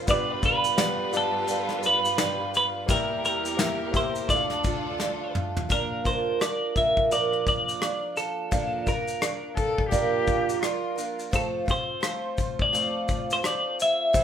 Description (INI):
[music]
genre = acoustic pop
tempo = 85 BPM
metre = 4/4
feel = swing 60% on 16ths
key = unclear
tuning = A4 = 441 Hz
[part]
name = clear upright piano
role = accompaniment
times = 0.0-5.7 s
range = A3 to E5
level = -33 LUFS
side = left 4 dB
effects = none
[part]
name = picked twelve-string acoustic guitar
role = accompaniment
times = 0.0-14.2 s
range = Bb2 to C5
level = -29 LUFS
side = right 4 dB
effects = none
[part]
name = clear symphonic string section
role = sustained chords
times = 0.0-5.7 s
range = D2 to B4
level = -35 LUFS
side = left 2 dB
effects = none
[part]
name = twelve-string electric guitar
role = melody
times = 0.1-14.2 s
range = A4 to E5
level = -26 LUFS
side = equal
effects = none
[part]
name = soft brush drum kit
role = drums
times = 0.1-14.2 s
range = kick drum, rim click, shaker, snare drum, toms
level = -29 LUFS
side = left 1 dB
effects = none
[part]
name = warm cello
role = second line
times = 9.6-11.2 s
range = F4 to A4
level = -30 LUFS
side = left 4 dB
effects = none
[sound]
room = moderate studio reverb, RT60 0.8 s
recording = band playing live in one room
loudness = -23 LUFS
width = side -8 dB against mid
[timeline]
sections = 0.0-5.7 A section; 5.7-14.2 B section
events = drum fill 5.0-5.7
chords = 0.1 G7; 2.9 Edim; 4.3 Dm; 5.7 Bb; 11.3 F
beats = | 0.09 0.79 1.49 2.19 | 2.89 3.60 4.30 5.00 | 5.70 6.41 7.11 7.81 | 8.51 9.22 9.92 10.62 | 11.32 12.03 12.73 13.43 | 14.14